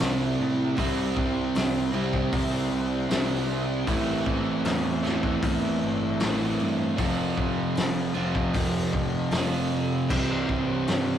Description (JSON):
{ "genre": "rock, shoegaze and dream pop", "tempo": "77 BPM", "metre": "4/4", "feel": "straight", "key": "unclear", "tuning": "A4 = 440 Hz", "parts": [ { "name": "picked twelve-string acoustic guitar", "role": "arpeggios", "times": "0.0-11.2 s", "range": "G3 to A4", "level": "-38 LUFS", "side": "left 1 dB", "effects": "none" }, { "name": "biting overdriven guitar", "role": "riff", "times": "0.0-11.2 s", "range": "F2 to C4", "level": "-32 LUFS", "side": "right 1 dB", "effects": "none" }, { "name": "overdriven semi-hollow guitar", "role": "riff", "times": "0.0-11.2 s", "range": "A2 to F4", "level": "-28 LUFS", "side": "right 4 dB", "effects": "none" }, { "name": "thick fuzz guitar", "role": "riff", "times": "0.0-11.2 s", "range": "F2 to C4", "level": "-30 LUFS", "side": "left 4 dB", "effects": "distortion" }, { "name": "growling picked electric bass", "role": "bass", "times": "0.0-11.2 s", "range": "F1 to A2", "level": "-34 LUFS", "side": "left 1 dB", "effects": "overdrive" }, { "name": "loose indie drum kit", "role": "drums", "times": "0.0-11.1 s", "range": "crash cymbal, hi-hat, kick drum, snare drum", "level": "-30 LUFS", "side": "left 1 dB", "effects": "none" } ], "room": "wet small room reverb, RT60 0.5 s", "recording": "rough rehearsal-room recording, warm saturation", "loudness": "-23 LUFS", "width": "side -10 dB against mid", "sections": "0.0-11.2 A section", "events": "none", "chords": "0.0 C; 3.9 Am7; 7.0 F; 10.1 C" }